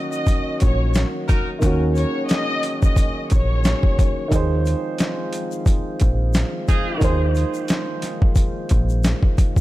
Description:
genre	hip hop, boom-bap hip-hop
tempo	89 BPM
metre	4/4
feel	swing 56% on 16ths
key	unclear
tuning	A4 = 437 Hz
part	warm symphonic violin section	melody	0.0-4.3 s	Db5 to Eb5	-27 LUFS	left 2 dB	high-pass filter, low-pass filter, ping-pong delay
part	dark baby grand piano	accompaniment	0.0-9.6 s	Eb3 to C5	-27 LUFS	right 3 dB	high-pass filter, low-pass filter
part	mellow tonewheel organ	sustained chords	0.0-9.6 s	Eb3 to Ab4	-30 LUFS	left 1 dB	slow rotary speaker, high-pass filter, low-pass filter
part	egg shaker	percussion	0.1-9.6 s	none	-41 LUFS	left 10 dB	none
part	boom bap sampler-style drum kit	drums	0.3-9.6 s	hi-hat, kick drum, snare drum	-19 LUFS	equal	overdrive
part	deep dub picked electric bass	bass	0.6-9.1 s	Bb1 to Eb2	-19 LUFS	equal	none
part	clear horn section	stabs	1.3-1.5, 6.7-7.1 s	Eb4 to Bb4	-30 LUFS	equal	high-pass filter, low-pass filter, ping-pong delay
room	small room ambience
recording	dark, warm production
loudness	-17 LUFS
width	side -16 dB against mid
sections	0.0-9.6 A section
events	none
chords	0.0 Ebm7; 4.3 Fm7

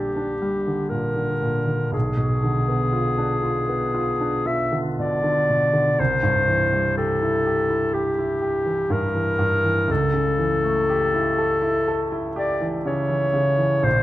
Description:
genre	classical, romantic duo for clarinet and grand piano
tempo	61 BPM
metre	4/4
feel	rubato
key	unclear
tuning	A4 = 443 Hz
part	warm clarinet	melody	0.0-14.0 s	G4 to E5	-22 LUFS	left 1 dB	none
part	warm concert grand piano	accompaniment	0.0-14.0 s	Bb1 to A4	-23 LUFS	right 1 dB	none
room	wet recital hall reverb, RT60 1.5 s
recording	none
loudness	-19 LUFS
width	side -15 dB against mid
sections	0.0-14.0 A section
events	none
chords	0.0 Gm/Bb; 1.9 Bdim7; 6.0 C; 9.9 A7/C#

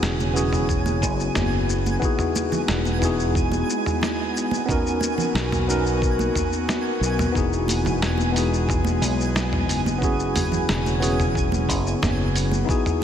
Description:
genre	sunset chillout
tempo	90 BPM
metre	4/4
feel	straight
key	E lydian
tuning	A4 = 441 Hz
part	tine electric piano	accompaniment	0.0-13.0 s	B3 to A#4	-25 LUFS	moving between left 6 dB and right 2 dB	medium tremolo, auto-pan, low-pass filter, tape echo, slapback echo
part	airy breathy pad	sustained chords	0.0-13.0 s	C#3 to A#4	-28 LUFS	left 2 dB	chorus
part	fingered electric bass	bass	0.0-12.6 s	E1 to B1	-25 LUFS	equal	none
part	dusty soul sampler-style drum kit	drums	0.0-13.0 s	hi-hat, shaker, snare drum, toms	-27 LUFS	equal	none
part	twinkling granular texture	texture	0.0-13.0 s	G#5	-32 LUFS	right 5 dB	built-in reverb
part	congas	percussion	0.2-12.7 s	none	-32 LUFS	right 5 dB	none
part	electronic kick drum	drums	0.7-12.8 s	none	-26 LUFS	equal	none
room	moderate lush hall reverb, RT60 2.8 s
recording	big arena sound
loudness	-20 LUFS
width	side -9 dB against mid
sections	0.0-13.0 A section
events	none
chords	0.0 F#7sus4; 2.0 Emaj7; 4.7 Bmaj7; 7.4 Emaj7; 10.0 F#7sus4

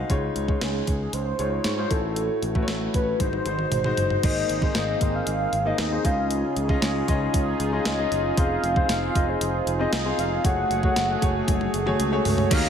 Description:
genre	1980s-style pop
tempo	116 BPM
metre	4/4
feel	straight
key	Db major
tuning	A4 = 440 Hz
part	warm concert grand piano	accompaniment	0.0-12.7 s	Ab2 to Gb5	-27 LUFS	left 3 dB	none
part	overdriven picked electric bass	bass	0.0-12.7 s	F1 to Ab2	-29 LUFS	right 1 dB	none
part	clean 12-bit digital drum machine	drums	0.1-12.6 s	crash cymbal, hi-hat, kick drum, snare drum, toms	-26 LUFS	equal	none
part	warm velvety synth lead	melody	0.6-12.7 s	Ab4 to Gb5	-28 LUFS	equal	chorus, diffuse ambient delay
part	warm analog pad	sustained chords	4.2-12.7 s	Db3 to F5	-30 LUFS	right 2 dB	chorus
part	overdriven electric guitar	accompaniment	12.5-12.7 s	Eb3 to Eb4	-27 LUFS	right 5 dB	analog chorus
room	moderate plate reverb, RT60 2.1 s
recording	dreamy mix soaked in reverb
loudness	-21 LUFS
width	side -8 dB against mid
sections	0.0-4.2 A section; 4.2-12.5 B section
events	drum fill 3.2-4.2, 11.5-12.5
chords	0.1 Dbadd9; 1.9 A6; 3.2 Ab7; 4.2 Abadd9; 6.0 Dbadd9; 8.4 Fm7; 10.4 Gbmadd9

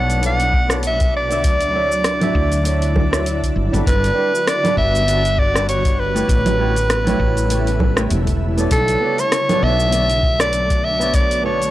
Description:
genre	sunset chillout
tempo	99 BPM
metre	4/4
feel	swing 56% on 16ths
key	B minor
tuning	A4 = 437 Hz
part	breathy soprano saxophone	melody	0.0-11.7 s	A4 to F#5	-19 LUFS	equal	none
part	flamenco guitar	accompaniment	0.0-11.6 s	D3 to E5	-25 LUFS	moving between left 2 dB and right 4 dB	auto-pan
part	shimmering ambient pad	sustained chords	0.0-11.7 s	B2 to F#4	-25 LUFS	right 1 dB	chorus, built-in reverb
part	woody fretless electric bass	bass	0.0-11.7 s	E1 to D2	-20 LUFS	equal	none
part	smooth R&B drum kit	drums	0.1-11.7 s	congas, hi-hat, rim click, shaker	-22 LUFS	equal	overdrive
part	electronic kick drum	drums	0.5-11.3 s	none	-20 LUFS	equal	overdrive
room	light reverb, digital ambience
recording	dry, gritty hardware recording, transformer saturation, cassette tape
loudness	-15 LUFS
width	side -15 dB against mid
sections	0.0-8.7 A section; 8.7-11.7 B section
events	none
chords	0.0 Bm9; 1.4 Dmaj9; 3.6 Gmaj9; 6.3 A9; 8.7 Bm9

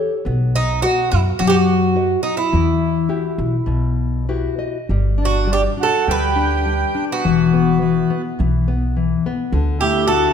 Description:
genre	fado-style ballad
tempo	104 BPM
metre	4/4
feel	rubato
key	E harmonic minor, G major from 4.9 s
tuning	A4 = 440 Hz
part	nylon-string guitar	accompaniment	0.0-10.3 s	B2 to D#5	-20 LUFS	left 6 dB	none
part	upright bass	bass	0.3-10.3 s	E1 to F#2	-20 LUFS	equal	none
part	Irish bouzouki	melody	0.6-10.3 s	D#4 to B4	-20 LUFS	right 4 dB	none
part	accordion	second line	5.2-10.3 s	B3 to G4	-22 LUFS	right 5 dB	none
room	moderate scoring stage reverb, RT60 1.9 s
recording	minimal, uncompressed stereo recording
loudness	-16 LUFS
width	side -7 dB against mid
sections	0.0-4.9 A section; 4.9-10.3 B section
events	nylon-string guitar fill 4.0-4.9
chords	0.3 B; 2.5 Emadd9; 4.9 G; 7.2 Esus2; 9.5 D

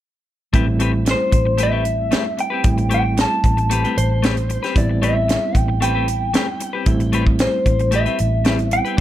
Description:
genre	straight-eighth soul blues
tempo	114 BPM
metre	4/4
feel	straight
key	A minor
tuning	A4 = 440 Hz
part	overdriven reed electric piano	accompaniment	0.5-9.0 s	G3 to E4	-24 LUFS	right 3 dB	fast tremolo
part	clean electric guitar	stabs	0.5-9.0 s	A3 to B4	-24 LUFS	left 6 dB	none
part	vintage muted fingered electric bass	bass	0.5-9.0 s	A1	-20 LUFS	equal	none
part	tight funk drum kit	drums	0.5-9.0 s	hi-hat, kick drum, snare drum	-20 LUFS	equal	none
part	electric guitar through a small old amp	melody	1.1-4.2, 7.4-9.0 s	C5 to A5	-21 LUFS	left 1 dB	harmonic tremolo
part	electric slide guitar	second line	4.0-7.2 s	C5 to G5	-24 LUFS	right 1 dB	slapback echo
room	studio ambience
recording	none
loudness	-16 LUFS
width	side -13 dB against mid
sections	0.5-9.0 A section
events	none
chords	0.5 Am9

